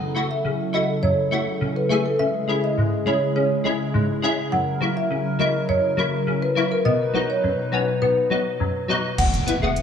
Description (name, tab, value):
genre	dancehall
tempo	103 BPM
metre	4/4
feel	straight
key	unclear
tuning	A4 = 442 Hz
part	marimba with medium mallets	melody	0.0-9.7 s	A4 to F#5	-24 LUFS	equal	diffuse ambient delay
part	wavetable chord stab	accompaniment	0.0-9.7 s	F#2 to G#4	-24 LUFS	left 2 dB	ensemble chorus
part	hollow soft pad	sustained chords	0.0-9.2 s	B2 to B4	-25 LUFS	equal	chorus
part	round analog bass	bass	9.2-9.8 s	E1	-24 LUFS	equal	none
part	afro-pop drum kit	drums	9.2-9.8 s	crash cymbal, hi-hat	-32 LUFS	left 3 dB	none
part	impact	sound effects	9.2-9.8 s	none	-25 LUFS	equal	none
room	wet plate reverb, RT60 2.3 s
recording	dreamy mix soaked in reverb, small room ambience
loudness	-19 LUFS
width	side -8 dB against mid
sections	0.0-9.2 A section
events	kick muted 9.2-9.8; impact 9.2-9.8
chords	0.0 F#m7; 2.2 C#m; 4.5 F#7; 6.9 B; 9.2 E